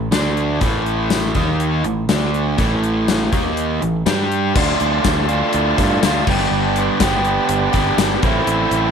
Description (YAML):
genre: classic rock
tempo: 122 BPM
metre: 4/4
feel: straight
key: unclear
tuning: A4 = 441 Hz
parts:
  - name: overdriven electric guitar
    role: riff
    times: 0.0-8.9 s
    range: G2 to G4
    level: -18 LUFS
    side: right 1 dB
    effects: none
  - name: growling fingered electric bass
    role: bass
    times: 0.0-8.9 s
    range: G1 to G2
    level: -22 LUFS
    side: right 1 dB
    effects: overdrive
  - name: gated 80s drum kit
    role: drums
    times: 0.1-8.8 s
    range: crash cymbal, hi-hat, kick drum, snare drum, tambourine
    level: -20 LUFS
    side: left 3 dB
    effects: none
  - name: overdriven tonewheel organ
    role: sustained chords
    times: 4.6-8.9 s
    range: D4 to C#5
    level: -25 LUFS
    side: right 2 dB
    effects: slow rotary speaker
room: light reverb, small room ambience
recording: 1960s-style stereo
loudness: -15 LUFS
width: side -7 dB against mid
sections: 0.0-4.6 A section; 4.6-8.9 B section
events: none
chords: 0.1 D5; 0.6 A5; 1.4 D#5; 1.8 A5; 2.1 D5; 2.6 A5; 3.3 D#5; 3.8 A5; 4.1 G5; 4.6 Dm; 6.3 G; 8.2 Am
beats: 0.12 | 0.62 1.11 1.60 2.10 | 2.59 3.08 3.57 4.06 | 4.55 5.04 5.53 6.02 | 6.51 7.00 7.49 7.98 | 8.47